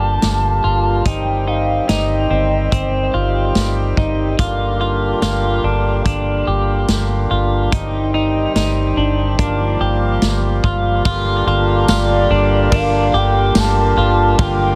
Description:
dream pop; 72 BPM; 4/4; straight; G minor; A4 = 441 Hz
warbly nostalgic lead; melody; 0.0-3.6, 11.9-14.8 s; D5 to A5; -22 LUFS; equal; chorus, tremolo, digital delay
pedal harmonium; sustained chords; 0.0-14.8 s; D3 to G4; -23 LUFS; equal
semi-hollow electric guitar; arpeggios; 0.0-14.8 s; C4 to G4; -23 LUFS; equal; subtle chorus, digital delay
vintage muted fingered electric bass; bass; 0.0-14.8 s; G1; -21 LUFS; equal
soft synth bell; texture; 0.0-1.4, 7.7-14.8 s; Eb4 to A5; -32 LUFS; equal
vintage drum kit; drums; 0.2-14.6 s; hi-hat, kick drum, ride cymbal, snare drum, tambourine; -23 LUFS; equal; soft clipping on kick
moderate lush hall reverb, RT60 3.0 s; dense, heavily limited modern master; -16 LUFS; mono
0.0-11.1 A section; 11.1-14.8 B section
0.0 Gm7; 1.1 Cm/G; 4.4 Gm7; 7.7 Cm/G; 9.4 Gm7
0.22 | 1.06 1.89 2.72 3.56 | 4.39 5.22 6.06 6.89 | 7.72 8.56 9.39 10.22 | 11.06 11.89 12.72 13.56 | 14.39

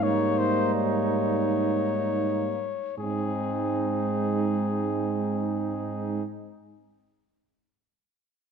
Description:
classical, brass quintet; 76-85 BPM; 4/4; straight; Ab major; A4 = 440 Hz
mellow trumpet; melody; 0.0-6.2 s; Ab4 to Db5; -30 LUFS; left 7 dB
dark trumpet; second line; 0.0-6.2 s; Eb4; -32 LUFS; right 10 dB
mellow trombone; accompaniment; 0.0-6.2 s; G3 to Ab3; -34 LUFS; right 4 dB
warm French horn; accompaniment; 0.0-6.2 s; Bb3 to C4; -31 LUFS; left 3 dB
mellow tuba; bass; 0.0-6.2 s; Ab2; -30 LUFS; right 4 dB
moderate scoring stage reverb, RT60 1.5 s; -24 LUFS; side -6 dB against mid
0.0-3.0 A section; 3.0-6.1 B section
slowing down 0.0-3.0
0.0 Eb7/Ab; 3.0 Ab
| 0.03 0.74 1.46 2.21 | 2.99 3.76 4.53 5.29

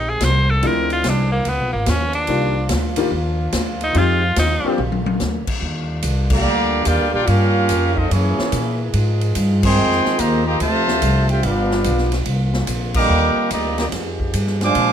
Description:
jazz, big band swing; 144 BPM; 4/4; swing 66% on 8ths; A4 = 444 Hz
bright tenor saxophone; melody; 0.0-4.8 s; Bb3 to C5; -20 LUFS; equal
clear trombone section; sustained chords; 0.0-14.9 s; C3 to Ab4; -29 LUFS; left 2 dB
upright bass; bass; 0.0-14.9 s; G1 to Bb2; -20 LUFS; equal
swinging big-band drum kit; drums; 0.2-14.9 s; crash cymbal, hi-hat, kick drum, ride cymbal, snare drum, toms; -25 LUFS; equal
bright upright piano; accompaniment; 0.6-4.8 s; Eb3 to G4; -22 LUFS; left 4 dB
warm trumpet section; melody; 6.3-14.9 s; Bb3 to D6; -20 LUFS; right 1 dB
warm trombone section; second line; 6.3-14.9 s; C3 to G4; -22 LUFS; right 2 dB
light reverb; close, detailed microphones; -16 LUFS; side -9 dB against mid
0.0-5.6 A section; 5.6-14.9 B section
tenor saxophone solo 0.0-5.6; drum fill 4.8-5.2; band accent 6.2, 9.6, 12.9
0.0 Abmaj7; 0.6 Dm7b5; 1.5 Db13; 2.3 Cm11; 4.0 Fm7; 4.8 Bb7; 5.6 Ebmaj9; 7.3 Gm7b5; 8.1 Gb9; 8.9 Fm9; 10.6 Dm11; 11.4 G7; 12.3 Cm11; 13.9 Fm9
0.21 | 0.63 1.04 1.46 1.88 | 2.29 2.71 3.13 3.54 | 3.96 4.37 4.79 5.21 | 5.62 6.04 6.45 6.87 | 7.28 7.70 8.11 8.53 | 8.95 9.36 9.78 10.19 | 10.61 11.02 11.44 11.85 | 12.27 12.68 13.10 13.51 | 13.93 14.34 14.76

